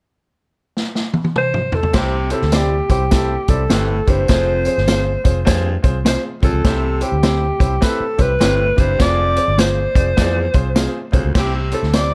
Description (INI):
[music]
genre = uptempo 1960s-style soul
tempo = 102 BPM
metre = 4/4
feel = swing 62% on 8ths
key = C major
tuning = A4 = 440 Hz
[part]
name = vintage drum kit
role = drums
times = 0.8-12.1 s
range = crash cymbal, hi-hat, kick drum, snare drum, toms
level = -21 LUFS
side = equal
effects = none
[part]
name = mellow alto saxophone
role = melody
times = 1.4-12.1 s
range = G4 to D5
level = -22 LUFS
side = equal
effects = tape echo
[part]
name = clear grand piano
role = accompaniment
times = 1.9-12.1 s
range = C3 to D5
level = -27 LUFS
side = equal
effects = none
[part]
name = clear baritone saxophone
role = riff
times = 1.9-11.8 s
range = D2 to C3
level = -28 LUFS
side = equal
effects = none
[part]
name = vintage muted fingered electric bass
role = bass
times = 1.9-12.1 s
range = F1 to F2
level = -22 LUFS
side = equal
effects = none
[part]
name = tambourine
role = percussion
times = 1.9-12.1 s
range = none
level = -36 LUFS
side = equal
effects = none
[part]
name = mellow electric guitar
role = stabs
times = 2.5-12.1 s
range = C4 to C5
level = -26 LUFS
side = equal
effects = none
[sound]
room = light reverb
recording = dark, warm production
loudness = -17 LUFS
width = mono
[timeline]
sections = 0.0-1.9 A section; 1.9-11.4 B section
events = drum fill 0.8-1.9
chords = 0.0 N.C.; 1.9 C; 4.3 Fm; 6.6 C; 9.0 Fm; 11.4 C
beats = 0.18 0.77 1.35 | 1.94 2.53 3.12 3.71 | 4.29 4.88 5.47 6.06 | 6.64 7.23 7.82 8.41 | 9.00 9.59 10.17 10.76 | 11.35 11.94